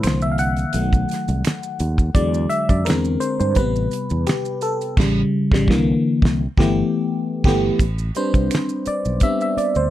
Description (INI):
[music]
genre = R&B, neo-soul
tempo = 85 BPM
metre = 4/4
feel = swing 54% on 16ths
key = A dorian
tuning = A4 = 441 Hz
[part]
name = FM electric piano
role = accompaniment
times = 0.0-9.9 s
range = C3 to F#5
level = -20 LUFS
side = left 1 dB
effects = chorus, phaser
[part]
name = fretless electric bass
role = bass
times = 0.0-9.9 s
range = G1 to G2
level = -22 LUFS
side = equal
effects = none
[part]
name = damped 70s drum kit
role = drums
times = 0.0-9.8 s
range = crash cymbal, finger snaps, hi-hat, kick drum, snare drum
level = -19 LUFS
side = right 1 dB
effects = none
[part]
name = finger snaps and maracas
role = percussion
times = 0.0-9.9 s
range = none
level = -34 LUFS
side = right 9 dB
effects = none
[sound]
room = light reverb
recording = none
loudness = -17 LUFS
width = side -13 dB against mid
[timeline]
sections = 0.0-7.8 A section; 7.8-9.9 B section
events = FM electric piano solo 0.0-7.8, 7.8-9.9; band accent 5.0-7.8; drums muted 7.1-7.8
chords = 0.0 C9; 0.7 B7; 2.1 E9; 2.9 E7alt; 3.6 Am9; 5.0 A7; 5.7 C9; 6.4 G69; 7.8 Am11